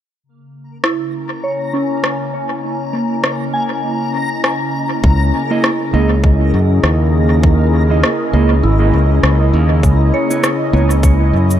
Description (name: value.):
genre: ambient dub.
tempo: 100 BPM.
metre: 4/4.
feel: swing 57% on 16ths.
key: C# dorian.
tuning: A4 = 440 Hz.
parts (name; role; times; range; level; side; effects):
airy breathy pad; sustained chords; 0.2-11.6 s; C#3 to G#5; -20 LUFS; equal; chorus.
backwards swelling texture; texture; 1.1-9.9 s; A#3 to A#5; -25 LUFS; equal; built-in reverb.
soft synth bell; arpeggios; 0.8-11.6 s; A#3 to G#5; -22 LUFS; equal; chorus, low-pass filter, tape echo.
electronic rim click and shaker; drums; 0.8-11.6 s; none; -20 LUFS; equal; overdrive, dub echo.
modern bright fingered electric bass; bass; 5.0-11.6 s; G#1 to F#2; -12 LUFS; equal; none.
electronic kick drum; drums; 5.0-11.2 s; none; -13 LUFS; equal; overdrive.
mellow electric guitar; stabs; 5.5-10.9 s; A#3 to D#5; -21 LUFS; right 5 dB; dub echo.
room: light reverb, digital ambience.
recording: none.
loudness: -12 LUFS.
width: side -10 dB against mid.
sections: 0.2-9.8 A section; 9.8-11.6 B section.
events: filter sweep on analog synth pad 0.2-9.8; filter sweep on synth bell 0.2-9.8; kick drops out 8.6-9.8.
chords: 0.2 C#m; 5.0 F#13/C# (rootless); 9.8 C#m7.